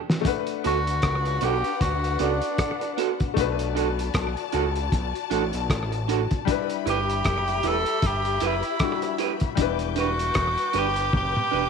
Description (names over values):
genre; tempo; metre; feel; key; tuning
lovers rock reggae; 77 BPM; 4/4; swing 59% on 16ths; D major; A4 = 440 Hz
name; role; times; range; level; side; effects
clear baby grand piano; accompaniment; 0.0-11.7 s; G3 to F#5; -30 LUFS; left 13 dB; slapback echo
cloth-damped thuddy drum kit; drums; 0.1-11.5 s; hi-hat, kick drum, rim click, snare drum, toms; -27 LUFS; equal; slapback echo
warm studio string section; second line; 0.2-11.7 s; D4 to G6; -31 LUFS; left 13 dB; none
electric guitar through a small old amp; stabs; 0.6-11.6 s; B3 to B4; -29 LUFS; right 13 dB; warbly pitch drift
clear tenor saxophone; melody; 0.7-11.7 s; D4 to A4; -26 LUFS; right 2 dB; tape echo
fat analog bass; bass; 0.7-11.7 s; E1 to D2; -28 LUFS; equal; none
room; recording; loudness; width
light reverb, small room reverb; 1960s-style stereo with parts hard left and right; -22 LUFS; side -6 dB against mid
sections
0.3-11.7 A section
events
break 0.0; drum fill 0.0, 11.1-11.7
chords
0.3 D6; 3.4 Bm7; 6.5 Em7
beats
| 0.25 1.03 1.81 2.58 | 3.36 4.14 4.92 5.69 | 6.47 7.25 8.03 8.80 | 9.58 10.36 11.13